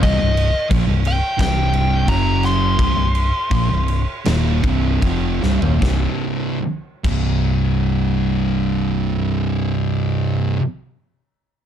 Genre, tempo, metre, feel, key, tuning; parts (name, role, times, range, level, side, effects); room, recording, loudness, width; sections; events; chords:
stoner and doom metal; 74-89 BPM; 4/4; straight; C phrygian; A4 = 438 Hz
fuzz lead guitar; melody; 0.0-5.0 s; Eb5 to C6; -22 LUFS; left 1 dB; distortion
thick fuzz guitar; riff; 0.0-10.6 s; C2 to F#3; -22 LUFS; left 8 dB; distortion
thick fuzz guitar; riff; 0.0-10.6 s; C2 to F#3; -22 LUFS; right 8 dB; distortion
hollow-body short-scale fingered electric bass; bass; 0.0-10.5 s; C1 to Bb1; -21 LUFS; equal; overdrive
big rock drum kit; drums; 0.0-7.3 s; crash cymbal, kick drum, snare drum, toms; -23 LUFS; equal
small room ambience; dark, warm production; -16 LUFS; side -9 dB against mid
0.0-5.8 A section; 5.8-9.1 B section
slowing down 0.0-5.8; drum fill 5.4-5.8
0.0 Cm; 2.1 F#5; 2.8 Cm; 5.8 C5